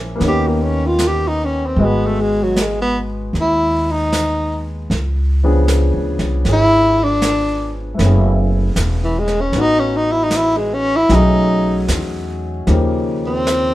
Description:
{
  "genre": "jazz ballad",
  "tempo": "77 BPM",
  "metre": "4/4",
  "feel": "swing 69% on 8ths",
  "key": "unclear",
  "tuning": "A4 = 439 Hz",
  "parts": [
    { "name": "warm baby grand piano", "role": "accompaniment", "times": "0.0-13.7 s", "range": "C#3 to D#5", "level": "-21 LUFS", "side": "left 2 dB", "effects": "none" },
    { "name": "upright bass", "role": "bass", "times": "0.0-13.7 s", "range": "E1 to E2", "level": "-18 LUFS", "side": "equal", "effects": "none" },
    { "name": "vintage brush drum kit", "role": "drums", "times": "0.2-13.7 s", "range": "brushed snare drum, hi-hat, snare drum", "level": "-24 LUFS", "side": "right 2 dB", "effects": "none" },
    { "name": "breathy tenor saxophone", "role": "melody", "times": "0.3-13.7 s", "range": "E3 to G4", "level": "-16 LUFS", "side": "equal", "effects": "none" }
  ],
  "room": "light reverb",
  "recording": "band playing live in one room",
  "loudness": "-14 LUFS",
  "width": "side -15 dB against mid",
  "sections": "0.0-13.7 A section",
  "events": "tenor saxophone solo 0.0-13.7",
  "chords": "0.2 D#7b13; 1.8 G#m7; 4.9 C#7b9; 8.0 F#m11; 11.1 B13; 12.7 D#7"
}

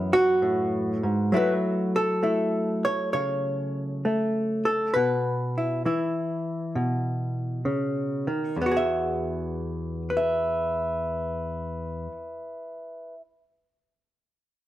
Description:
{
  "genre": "solo jazz",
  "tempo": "66 BPM",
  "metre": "4/4",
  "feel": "swing 68% on 8ths",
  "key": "E major",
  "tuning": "A4 = 440 Hz",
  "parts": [
    { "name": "hollow-body jazz guitar", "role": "solo", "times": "0.0-13.2 s", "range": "E2 to E5", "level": "-24 LUFS", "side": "equal", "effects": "none" }
  ],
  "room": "moderate stone room reverb, RT60 1.2 s",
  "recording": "band playing live in one room",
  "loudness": "-24 LUFS",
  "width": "side -14 dB against mid",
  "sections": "0.0-8.6 A section; 8.6-12.2 B section",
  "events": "none",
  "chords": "0.0 B7sus4; 1.3 F#m7; 4.9 Bsus4; 8.6 Eadd9"
}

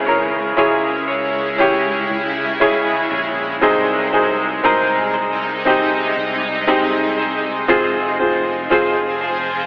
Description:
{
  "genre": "pop ballad",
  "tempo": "59 BPM",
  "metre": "4/4",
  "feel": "straight",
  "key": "Ab major",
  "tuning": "A4 = 440 Hz",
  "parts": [
    { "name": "clear upright piano", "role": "accompaniment", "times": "0.0-9.7 s", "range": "C3 to Bb4", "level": "-21 LUFS", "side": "equal", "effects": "none" },
    { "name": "shimmering ambient pad", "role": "sustained chords", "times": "0.0-9.7 s", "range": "C3 to Ab4", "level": "-25 LUFS", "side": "equal", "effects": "chorus, built-in reverb" },
    { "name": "direct-recorded clean electric guitar", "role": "arpeggios", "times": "0.0-9.7 s", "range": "C3 to Db5", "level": "-23 LUFS", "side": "equal", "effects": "lush chorus" },
    { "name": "fretless electric bass", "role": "bass", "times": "0.0-9.7 s", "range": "F1 to Db2", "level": "-34 LUFS", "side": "equal", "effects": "none" }
  ],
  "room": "moderate lush hall reverb, RT60 2.7 s",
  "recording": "worn, warbling old tape, cassette tape, warbly pitch drift, telephone sound",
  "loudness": "-17 LUFS",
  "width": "mono",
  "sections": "0.0-9.7 A section",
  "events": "none",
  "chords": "0.0 Dbm; 3.6 Ab/C; 7.7 Fm"
}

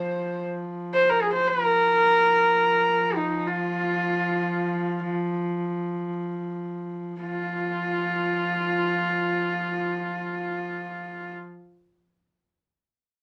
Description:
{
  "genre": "mongolian traditional, Mongolian folk",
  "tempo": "free time",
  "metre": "none",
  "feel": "none",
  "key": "unclear",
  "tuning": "A4 = 440 Hz",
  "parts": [
    { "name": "clear horsehead fiddle", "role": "melody", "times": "0.0-11.3 s", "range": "Eb4 to C5", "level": "-25 LUFS", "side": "equal", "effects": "none" },
    { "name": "warm horsehead fiddle", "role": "drone", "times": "0.0-11.4 s", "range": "F3", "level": "-32 LUFS", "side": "equal", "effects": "none" }
  ],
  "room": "wet club reverb, RT60 0.6 s",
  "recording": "none",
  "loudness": "-25 LUFS",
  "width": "mono",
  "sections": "0.0-7.2 A section; 7.2-10.6 B section",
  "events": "slowing down 1.6-7.2",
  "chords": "none"
}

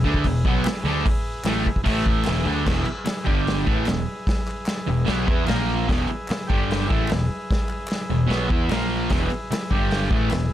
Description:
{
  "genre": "garage rock duo or trio",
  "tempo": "149 BPM",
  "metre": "4/4",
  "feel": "straight",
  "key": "E mixolydian",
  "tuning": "A4 = 440 Hz",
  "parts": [
    { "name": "combo organ", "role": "sustained chords", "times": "0.0-10.5 s", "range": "E4 to B5", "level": "-33 LUFS", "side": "equal", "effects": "none" },
    { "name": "fuzz guitar", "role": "riff", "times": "0.0-10.5 s", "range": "E2 to E4", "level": "-23 LUFS", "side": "equal", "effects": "distortion" },
    { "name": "picked electric bass", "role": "bass", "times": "0.0-10.5 s", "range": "E1 to E2", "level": "-27 LUFS", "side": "equal", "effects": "overdrive" },
    { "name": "vintage drum kit", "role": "drums", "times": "0.0-10.4 s", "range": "crash cymbal, hi-hat, kick drum, snare drum", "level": "-24 LUFS", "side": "equal", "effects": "none" },
    { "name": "group handclap", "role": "percussion", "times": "0.7-10.4 s", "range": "none", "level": "-38 LUFS", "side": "left 1 dB", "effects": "none" }
  ],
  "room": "light reverb",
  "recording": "none",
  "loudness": "-20 LUFS",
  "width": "side -12 dB against mid",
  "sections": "0.0-2.7 A section; 2.7-10.5 B section",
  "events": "transistor combo organ fill 5.1-5.9",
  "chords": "0.0 E; 1.9 A5; 2.3 E; 3.3 G5; 3.7 E; 5.5 A#5; 5.9 E; 6.5 G5; 6.9 E; 8.7 A#5; 9.1 E; 9.7 G5"
}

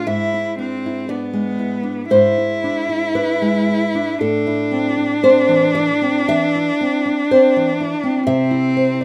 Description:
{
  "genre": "romantic duo for cello and classical guitar",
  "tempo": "59 BPM",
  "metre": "4/4",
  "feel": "rubato",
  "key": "A minor",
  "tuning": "A4 = 440 Hz",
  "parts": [
    { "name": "clear cello", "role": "melody", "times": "0.0-9.0 s", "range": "B3 to E4", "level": "-22 LUFS", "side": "equal", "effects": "none" },
    { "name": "nylon-string guitar", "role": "accompaniment", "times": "0.0-9.0 s", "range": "G#2 to E5", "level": "-19 LUFS", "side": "equal", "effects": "none" }
  ],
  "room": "wet studio reverb, RT60 0.5 s",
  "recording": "rough home demo mix",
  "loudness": "-17 LUFS",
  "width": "mono",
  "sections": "0.0-9.0 A section",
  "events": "none",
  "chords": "0.1 E7/G#; 4.2 Am; 8.3 C"
}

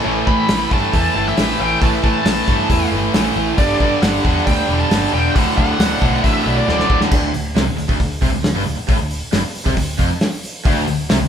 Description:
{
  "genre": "classic rock",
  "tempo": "136 BPM",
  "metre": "4/4",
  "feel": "straight",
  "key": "unclear",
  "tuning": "A4 = 441 Hz",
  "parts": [
    { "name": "cranked stack guitar", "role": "riff", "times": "0.0-11.3 s", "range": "D2 to A3", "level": "-22 LUFS", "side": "right 7 dB", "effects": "overdrive" },
    { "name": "overdriven electric guitar", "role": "riff", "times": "0.0-11.3 s", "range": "D2 to A3", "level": "-22 LUFS", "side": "left 6 dB", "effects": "spring reverb" },
    { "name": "overdriven electric guitar", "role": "riff", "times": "0.0-7.1, 10.7-11.3 s", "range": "D2 to A3", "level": "-23 LUFS", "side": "equal", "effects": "none" },
    { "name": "picked electric bass", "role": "bass", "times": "0.1-11.3 s", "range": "D1 to A2", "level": "-23 LUFS", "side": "equal", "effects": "none" },
    { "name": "bluesy overdriven lead guitar", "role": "melody", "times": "0.3-7.0 s", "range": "D5 to B5", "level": "-22 LUFS", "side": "right 1 dB", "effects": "wah, distortion" },
    { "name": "cloth-damped thuddy drum kit", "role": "drums", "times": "0.3-11.2 s", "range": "crash cymbal, hi-hat, kick drum, snare drum", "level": "-19 LUFS", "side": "equal", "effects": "none" }
  ],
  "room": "moderate large studio reverb, RT60 0.9 s",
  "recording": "band playing live in one room",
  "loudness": "-14 LUFS",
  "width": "side -8 dB against mid",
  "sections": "0.0-7.1 A section; 7.1-11.3 B section",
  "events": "drum fill 6.7-7.1",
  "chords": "0.0 A5; 3.6 G5; 5.3 D; 7.1 D5"
}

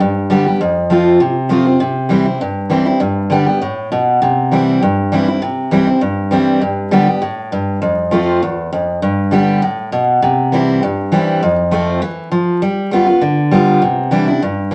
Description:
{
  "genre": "bluegrass",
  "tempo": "200 BPM",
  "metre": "4/4",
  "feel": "straight",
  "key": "C major",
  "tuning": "A4 = 440 Hz",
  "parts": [
    { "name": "picked steel-string acoustic guitar", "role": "solo", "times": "0.0-14.7 s", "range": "E2 to G4", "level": "-15 LUFS", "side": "equal", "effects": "none" }
  ],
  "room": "wet studio reverb, RT60 0.6 s",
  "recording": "vinyl crackle",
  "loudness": "-15 LUFS",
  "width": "mono",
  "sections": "0.0-14.7 A section",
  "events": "none",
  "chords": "0.0 G; 0.6 F; 1.8 C; 3.0 G; 4.2 C; 6.6 G; 7.8 F; 9.0 G; 10.2 C; 11.4 F; 12.6 G7; 13.8 Cadd9"
}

